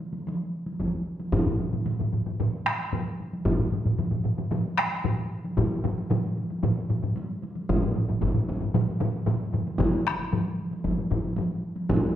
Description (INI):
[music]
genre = japanese traditional, taiko drum ensemble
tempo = 114 BPM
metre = 4/4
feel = straight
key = none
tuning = none
[part]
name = taiko ensemble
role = percussion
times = 0.0-12.0 s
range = none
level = -31 LUFS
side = equal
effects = none
[part]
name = taiko ensemble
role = percussion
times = 0.8-12.0 s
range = none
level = -27 LUFS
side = equal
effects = none
[part]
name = taiko ensemble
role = percussion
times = 1.3-11.5 s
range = none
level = -30 LUFS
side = left 4 dB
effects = none
[part]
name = taiko ensemble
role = percussion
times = 1.3-12.0 s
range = none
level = -29 LUFS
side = right 4 dB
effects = none
[sound]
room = wet recital hall reverb, RT60 1.3 s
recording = none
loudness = -25 LUFS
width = side -11 dB against mid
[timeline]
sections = 0.0-1.3 A section; 1.3-9.8 B section; 9.8-12.2 C section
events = none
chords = none